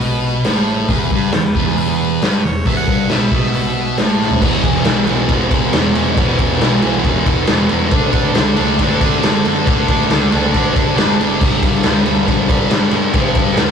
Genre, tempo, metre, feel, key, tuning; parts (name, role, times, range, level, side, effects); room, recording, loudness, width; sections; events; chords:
garage rock duo or trio; 137 BPM; 4/4; straight; A4 = 439 Hz
clear harmonica; melody; 0.0-4.0 s; G#4 to F#5; -26 LUFS; equal; overdrive
thick fuzz guitar; riff; 0.0-13.7 s; E2 to D4; -16 LUFS; equal; distortion
hollow-body short-scale fingered electric bass; bass; 0.0-13.7 s; E1 to G2; -26 LUFS; equal; tube saturation
raw garage drum kit; drums; 0.0-13.7 s; crash cymbal, hi-hat, kick drum, ride cymbal, snare drum, toms; -15 LUFS; equal
wet booth ambience, RT60 0.2 s; rough rehearsal-room recording, tube saturation; -12 LUFS; side -7 dB against mid
0.0-4.4 A section; 4.4-13.7 B section
drum fill 4.2
0.0 E5; 7.9 D/F#; 11.4 G5